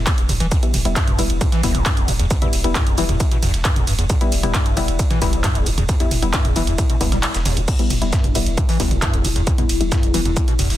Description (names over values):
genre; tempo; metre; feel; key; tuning
driving peak-time techno; 134 BPM; 4/4; straight; E minor; A4 = 440 Hz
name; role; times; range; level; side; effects
saturated sub bass; bass; 0.0-10.8 s; E1; -23 LUFS; equal; overdrive, sidechain pumping, low-pass filter
overdriven acid bass; riff; 0.1-10.7 s; E1 to G3; -25 LUFS; equal; wide subtle chorus, sidechain pumping, ping-pong delay
dusty soul sampler-style drum kit; drums; 0.1-10.8 s; hi-hat, shaker, snare drum; -33 LUFS; equal; none
electronic kick drum; drums; 0.1-10.5 s; none; -19 LUFS; equal; distortion, overdrive
punchy analog drum machine; drums; 0.1-10.8 s; crash cymbal, handclaps, hi-hat, ride cymbal, toms; -24 LUFS; right 2 dB; sidechain pumping on hats, sidechain pumping on cymbals, sidechain pumping on toms
filtered dub chord stab; stabs; 0.6-10.2 s; G3 to E4; -25 LUFS; left 4 dB; chorus, sidechain pumping, ping-pong delay
overtone-sweeping drone; drone; 8.3-10.8 s; E3 to E4; -28 LUFS; left 6 dB; chorus, built-in reverb, sidechain pumping
room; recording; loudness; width
light reverb, digital ambience; dense, heavily limited modern master; -16 LUFS; side -14 dB against mid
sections
0.0-7.7 A section; 7.7-10.8 A section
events
drop 0.0-7.7, 7.7-10.8; kick drops out 7.2-7.7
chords
0.0 Em